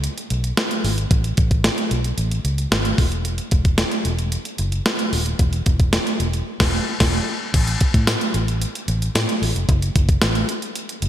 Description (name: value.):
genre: 1980s-style pop.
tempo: 112 BPM.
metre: 4/4.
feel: straight.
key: F# minor.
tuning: A4 = 439 Hz.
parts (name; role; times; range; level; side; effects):
vintage muted fingered electric bass; bass; 0.0-11.1 s; D#1 to A2; -22 LUFS; equal; none.
clean 12-bit digital drum machine; drums; 0.0-11.1 s; crash cymbal, hi-hat, kick drum, snare drum, tambourine; -19 LUFS; equal; gated reverb.
room: light reverb.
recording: bright 1980s-style digital production.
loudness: -18 LUFS.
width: side -11 dB against mid.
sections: 0.0-7.5 A section; 7.5-11.1 B section.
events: band accent 6.5-7.5.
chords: none.